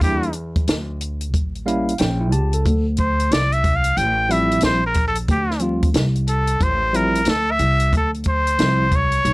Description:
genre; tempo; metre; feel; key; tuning
hip hop, jazz-hop; 91 BPM; 4/4; swing 65% on 16ths; D minor; A4 = 440 Hz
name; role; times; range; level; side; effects
trumpet with straight mute; melody; 0.0-9.3 s; G4 to G5; -19 LUFS; equal; none
tine electric piano; accompaniment; 0.0-8.9 s; F3 to A5; -22 LUFS; equal; medium stereo tremolo
upright bass; bass; 0.0-9.3 s; A1 to E2; -21 LUFS; equal; none
compact cocktail drum kit; drums; 0.0-9.3 s; hi-hat, kick drum, snare drum; -21 LUFS; equal; none
room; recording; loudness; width
little or no reverb; dry, gritty hardware recording, vinyl crackle; -16 LUFS; side -23 dB against mid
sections
0.0-7.9 A section; 7.9-9.3 B section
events
muted trumpet solo 0.0-7.9; tine electric piano fill 1.3-2.7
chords
0.0 Em7b5; 1.3 A7b9; 2.7 Dm11

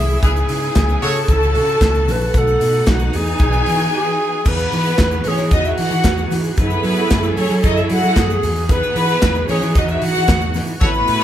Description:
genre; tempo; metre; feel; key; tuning
disco; 113 BPM; 4/4; straight; unclear; A4 = 440 Hz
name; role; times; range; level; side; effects
bright reedy wooden-headed alto flute; melody; 0.0-11.2 s; E4 to B4; -22 LUFS; equal; none
clear symphonic string section; second line; 0.0-11.2 s; B3 to A5; -21 LUFS; left 1 dB; none
clear studio string section; sustained chords; 0.0-11.2 s; C#3 to A4; -24 LUFS; right 2 dB; none
overdriven picked electric bass; bass; 0.0-11.2 s; A1 to F#3; -20 LUFS; equal; none
tube shaker; percussion; 0.1-11.2 s; none; -41 LUFS; right 6 dB; none
warm horn section; stabs; 0.2-1.2, 10.8-11.2 s; E4 to C#5; -22 LUFS; equal; none
modern studio drum kit; drums; 0.2-11.2 s; crash cymbal, handclaps, hi-hat, kick drum, snare drum; -19 LUFS; equal; none
congas; percussion; 0.2-10.9 s; none; -32 LUFS; left 4 dB; none
room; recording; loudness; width
moderate large studio reverb, RT60 0.8 s; band playing live in one room; -14 LUFS; side -11 dB against mid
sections
0.0-4.5 A section; 4.5-11.2 B section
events
break 3.9-4.5; band accent 10.8-11.2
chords
0.2 C#m7; 1.0 F#m7/C#; 2.3 B7; 3.1 Emaj7; 4.5 Emaj9; 6.6 F#m9; 8.4 Emaj9

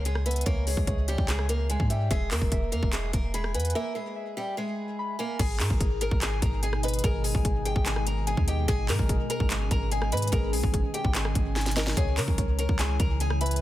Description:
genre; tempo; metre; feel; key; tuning
hip hop, trap; 146 BPM; 4/4; half-time; G# harmonic minor; A4 = 440 Hz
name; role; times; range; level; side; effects
picked old ladder-braced acoustic guitar; melody; 0.0-13.6 s; G3 to B5; -32 LUFS; equal; digital delay
muted felt-like synth keys; accompaniment; 0.0-13.6 s; G#4 to B5; -36 LUFS; left 2 dB; chorus, phaser
clean 808-style bass; bass; 0.0-13.6 s; E1 to C#3; -28 LUFS; equal; none
trap drum kit; drums; 0.1-13.6 s; crash cymbal, handclaps, hi-hat, kick drum, rim click, snare drum; -28 LUFS; equal; none
glassy FM pad; sustained chords; 5.9-13.6 s; B2 to E4; -36 LUFS; equal; ensemble chorus, built-in reverb
room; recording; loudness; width
little or no reverb; dense, heavily limited modern master; -24 LUFS; side -14 dB against mid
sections
0.0-5.4 A section; 5.4-13.6 B section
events
break 3.8-5.4; drum fill 11.6-12.0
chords
0.0 C#m; 2.1 E; 5.4 G#m; 12.0 C#m

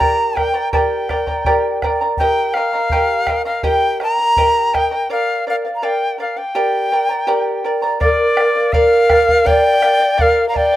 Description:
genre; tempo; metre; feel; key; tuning
andean folk, Andean ensemble; 82 BPM; 4/4; straight; unclear; A4 = 440 Hz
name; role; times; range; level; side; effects
bright reedy quena; melody; 0.0-10.8 s; D5 to Bb5; -17 LUFS; left 1 dB; none
charango; accompaniment; 0.0-10.8 s; G4 to Bb5; -18 LUFS; right 1 dB; none
bombo; percussion; 0.0-10.7 s; none; -23 LUFS; right 1 dB; none
polished pan flute; second line; 8.0-10.8 s; Bb4 to F5; -14 LUFS; equal; none
room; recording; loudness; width
light reverb, small room ambience; rough home demo mix; -13 LUFS; side -13 dB against mid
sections
0.0-8.0 A section; 8.0-10.8 B section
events
break 5.1-8.0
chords
0.0 Gm; 2.2 Eb; 5.1 Bb; 6.6 Gm; 8.0 Bb

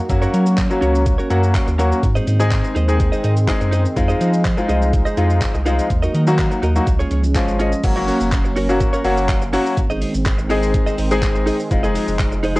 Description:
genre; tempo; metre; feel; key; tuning
dance-pop; 124 BPM; 4/4; straight; unclear; A4 = 441 Hz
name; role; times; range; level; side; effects
sweeping resonant pad; sustained chords; 0.0-12.6 s; Eb3 to Gb4; -25 LUFS; right 1 dB; chorus, sidechain pumping, cassette tape
direct-recorded clean electric guitar; riff; 0.0-12.6 s; Db4 to Eb5; -25 LUFS; right 2 dB; lush chorus, cassette tape
clear concert grand piano; accompaniment; 0.1-12.6 s; F3 to Ab5; -20 LUFS; left 2 dB; sidechain pumping, cassette tape, plate reverb
warm sub bass; bass; 0.1-12.6 s; F1 to Gb3; -19 LUFS; equal; sidechain pumping
pop drum kit; drums; 0.1-12.6 s; crash cymbal, handclaps, hi-hat, kick drum, shaker; -21 LUFS; equal; cassette tape
room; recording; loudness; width
light reverb; home recording on cassette; -15 LUFS; side -21 dB against mid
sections
0.0-7.8 A section; 7.8-12.6 B section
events
grand piano fill 7.1-7.8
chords
0.1 Gb; 2.0 Ab; 4.0 Fm7; 5.9 Ebm; 6.9 Db; 7.8 Gb; 9.8 Ab; 11.7 Fm7

